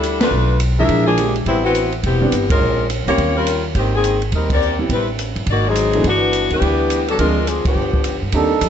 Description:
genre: jazz, big band swing.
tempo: 210 BPM.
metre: 4/4.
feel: swing 62% on 8ths.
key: unclear.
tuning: A4 = 440 Hz.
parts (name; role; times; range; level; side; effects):
mellow saxophone section; melody; 0.0-8.2 s; Eb3 to E5; -18 LUFS; left 2 dB; none.
upright bass; bass; 0.0-8.7 s; E1 to G2; -20 LUFS; equal; none.
open jazz drum kit; drums; 0.0-8.7 s; hi-hat, kick drum, ride cymbal, snare drum; -23 LUFS; right 1 dB; none.
warm upright piano; accompaniment; 0.8-8.5 s; Eb3 to G4; -23 LUFS; right 2 dB; none.
mellow trombone section; second line; 8.3-8.7 s; G3 to A4; -16 LUFS; right 5 dB; none.
room: light reverb.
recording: dark, warm production, nothing above 7.9 kHz.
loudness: -15 LUFS.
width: side -9 dB against mid.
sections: 0.0-8.3 A section.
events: band accent 0.2, 2.5, 4.5, 7.6.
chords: 0.3 Bm7b5; 0.9 Bb7#11; 1.5 Am9; 2.6 Bbm7; 3.2 Eb13; 3.8 Abmaj9#11; 4.9 Am7; 5.5 Ab9; 6.0 G6; 7.2 Dm7b5; 7.8 G7.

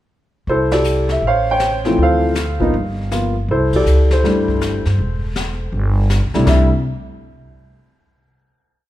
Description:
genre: jazz piano trio.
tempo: 160 BPM.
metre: 4/4.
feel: swing 65% on 8ths.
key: C major.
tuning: A4 = 438 Hz.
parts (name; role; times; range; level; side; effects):
warm baby grand piano; melody; 0.5-6.8 s; C3 to G5; -17 LUFS; equal; none.
upright bass; bass; 0.5-6.7 s; E1 to G2; -18 LUFS; equal; none.
jazz brush drum kit; drums; 0.5-6.8 s; brushed snare drum, crash cymbal, hi-hat, kick drum, ride cymbal, snare drum; -24 LUFS; left 2 dB; none.
room: light reverb.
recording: none.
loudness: -14 LUFS.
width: side -14 dB against mid.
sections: 0.5-6.5 A section; 6.5-8.0 final chord.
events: band accent 0.7, 3.7.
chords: 0.5 C69; 1.2 A7alt; 2.0 Dm9; 2.7 G7#9; 3.5 C69; 6.5 C.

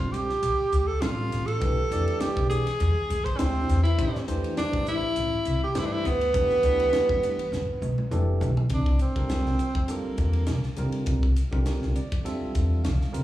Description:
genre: electric jazz fusion.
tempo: 101 BPM.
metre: 4/4.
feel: swing 54% on 16ths.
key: C major.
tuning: A4 = 441 Hz.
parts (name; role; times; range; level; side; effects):
clear tenor saxophone; melody; 0.0-10.8 s; Bb3 to B#4; -26 LUFS; right 1 dB; slapback echo.
bell-like tine electric piano; accompaniment; 0.0-13.2 s; D3 to F5; -33 LUFS; equal; medium stereo tremolo, slapback echo.
upright bass; bass; 0.0-13.2 s; F1 to C3; -26 LUFS; equal; none.
crisp fusion drum kit; drums; 0.0-13.2 s; hi-hat, kick drum, ride cymbal, snare drum, toms; -31 LUFS; equal; none.
congas; percussion; 0.1-13.2 s; none; -40 LUFS; left 1 dB; slapback echo.
room: studio ambience.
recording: live gig heard through the venue's PA, club reverb, small room ambience.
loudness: -23 LUFS.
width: side -14 dB against mid.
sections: 0.0-8.7 A section; 8.7-13.2 B section.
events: drum fill 7.5-8.7; tenor saxophone solo 8.7-13.2; tine electric piano fill 11.7-13.2.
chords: 0.0 Bbmaj7; 1.6 Bm7; 2.8 E7alt; 4.0 Am7; 6.3 G69; 8.7 C13sus4.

